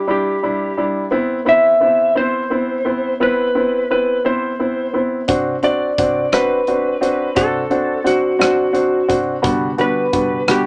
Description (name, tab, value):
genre	six-eight pop ballad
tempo	58 BPM (dotted quarters)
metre	6/8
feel	straight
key	unclear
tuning	A4 = 441 Hz
part	electric slide guitar	melody	0.0-10.7 s	F#4 to E5	-20 LUFS	equal	none
part	clear upright piano	accompaniment	0.1-10.7 s	D3 to F#4	-20 LUFS	equal	none
part	modern studio drum kit	drums	5.3-10.6 s	hi-hat, kick drum, rim click	-26 LUFS	equal	none
room	moderate club reverb, RT60 0.8 s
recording	none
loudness	-17 LUFS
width	mono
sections	0.0-10.7 A section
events	none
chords	0.0 Em7; 1.1 Cmaj7; 5.3 D7; 9.4 Gmaj7/D